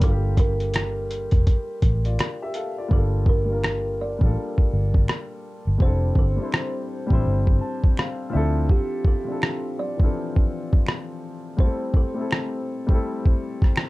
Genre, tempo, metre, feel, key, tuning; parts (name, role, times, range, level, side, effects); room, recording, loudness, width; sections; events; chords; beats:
lo-fi hip hop; 83 BPM; 4/4; swing 60% on 16ths; G dorian; A4 = 440 Hz
kalimba; melody; 0.0-13.2 s; G4 to D5; -32 LUFS; right 2 dB; low-pass filter, analog delay
dark upright piano; accompaniment; 0.0-13.9 s; E3 to A5; -29 LUFS; left 2 dB; cassette tape, low-pass filter
vintage muted fingered electric bass; bass; 0.0-8.7 s; F1 to D2; -23 LUFS; equal
lo-fi sampler-style drum kit; drums; 0.0-13.9 s; hi-hat, kick drum, rim click; -19 LUFS; equal; overdrive
finger snap; percussion; 0.7-13.9 s; -40 LUFS; right 3 dB
light reverb; dark, warm production; -20 LUFS; side -20 dB against mid
0.0-2.9 A section; 2.9-13.9 B section
hi-hats muted 2.9-13.9
0.0 Gm9; 5.8 Fmaj13; 8.3 Dm9; 11.6 Am7
| 0.02 0.74 1.47 2.19 | 2.91 3.63 4.36 5.08 | 5.80 6.53 7.25 7.97 | 8.69 9.42 10.14 10.86 | 11.59 12.31 13.03 13.76